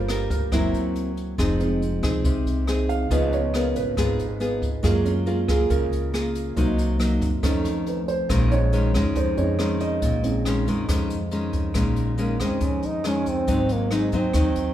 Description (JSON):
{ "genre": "bossa nova", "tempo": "139 BPM", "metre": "4/4", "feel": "straight", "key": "Bb minor", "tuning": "A4 = 440 Hz", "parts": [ { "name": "dark concert grand piano", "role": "accompaniment", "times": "0.0-11.8 s", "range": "F3 to F5", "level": "-27 LUFS", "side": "right 4 dB", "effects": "none" }, { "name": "nylon-string guitar", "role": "accompaniment", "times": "0.0-14.7 s", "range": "F2 to Bb4", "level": "-25 LUFS", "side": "left 2 dB", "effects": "none" }, { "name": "upright bass", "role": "bass", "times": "0.0-14.7 s", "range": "F1 to Gb2", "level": "-26 LUFS", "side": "equal", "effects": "none" }, { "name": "jazz brush drum kit", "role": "drums", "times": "0.1-14.7 s", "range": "hi-hat, kick drum, rim click", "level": "-28 LUFS", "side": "equal", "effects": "none" }, { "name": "breathy trombone", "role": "melody", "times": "12.2-14.7 s", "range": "Ab3 to Eb4", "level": "-26 LUFS", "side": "right 3 dB", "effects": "none" } ], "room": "moderate recital hall reverb, RT60 1.4 s", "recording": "recorded in a church or concert hall", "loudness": "-20 LUFS", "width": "side -12 dB against mid", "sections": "0.0-11.8 A section; 11.8-14.7 B section", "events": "grand piano solo 0.0-11.8", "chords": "0.0 Gm7; 0.5 Gb7#11; 1.4 Fm7; 3.1 Db7; 4.8 Gbmaj9; 6.6 Cm7b5; 7.4 Faug7; 8.3 Bbm11; 11.8 Bbm7; 13.5 Ab7" }